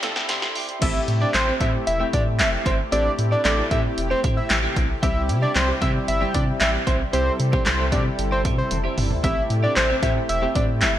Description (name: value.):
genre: dance-pop.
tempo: 114 BPM.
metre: 4/4.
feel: straight.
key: A minor.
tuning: A4 = 440 Hz.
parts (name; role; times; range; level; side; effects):
chorused retro synth keys; accompaniment; 0.0-11.0 s; G3 to C6; -30 LUFS; left 1 dB; tremolo, sidechain pumping.
lush unison pad; sustained chords; 0.0-11.0 s; C3 to A4; -32 LUFS; equal; chorus, sidechain pumping.
warm sub bass; bass; 0.0-11.0 s; E1 to C3; -25 LUFS; equal; sidechain pumping.
punchy analog drum machine; drums; 0.0-10.9 s; crash cymbal, handclaps, hi-hat, kick drum, snare drum, toms; -23 LUFS; equal; gated reverb.
twelve-string electric guitar; riff; 0.2-11.0 s; C4 to G4; -32 LUFS; right 5 dB; wide subtle chorus.
fat analog lead; melody; 0.8-10.9 s; C5 to E5; -24 LUFS; equal; sidechain pumping, digital delay.
room: light reverb.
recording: bright 1980s-style digital production, high-pass filter.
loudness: -19 LUFS.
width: side -12 dB against mid.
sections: 0.8-11.0 A section.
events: drum fill 0.0-0.8, 8.7-9.2; synth keys fill 0.0-0.8; drop 0.8-11.0.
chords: 0.0 Am7; 5.0 C; 9.2 Am7.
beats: 0.29 | 0.82 1.34 1.87 2.40 | 2.92 3.45 3.98 4.50 | 5.03 5.55 6.08 6.61 | 7.13 7.66 8.19 8.71 | 9.24 9.77 10.29 10.82.